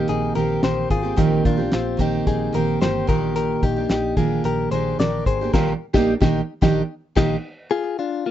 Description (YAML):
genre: jangly indie pop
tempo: 110 BPM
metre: 4/4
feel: straight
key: unclear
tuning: A4 = 440 Hz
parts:
  - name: picked steel-string acoustic guitar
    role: accompaniment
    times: 0.0-7.4 s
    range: Bb2 to G4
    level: -22 LUFS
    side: right 6 dB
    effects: none
  - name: direct-recorded clean electric guitar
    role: arpeggios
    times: 0.0-8.3 s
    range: Bb3 to D5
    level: -23 LUFS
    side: left 6 dB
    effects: slapback echo
  - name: vintage muted picked electric bass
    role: bass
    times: 0.0-7.4 s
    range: G1 to Bb1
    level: -28 LUFS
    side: equal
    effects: none
  - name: cloth-damped thuddy drum kit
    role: drums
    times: 0.1-7.3 s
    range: crash cymbal, hi-hat, kick drum, snare drum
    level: -21 LUFS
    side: equal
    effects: none
room: light reverb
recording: rough home demo mix, nothing above 7.9 kHz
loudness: -18 LUFS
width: side -11 dB against mid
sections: 0.0-7.7 A section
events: band accent 5.5-7.7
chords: 0.0 Cm; 3.1 Ebmaj7; 7.7 Bb7(no3) (rootless)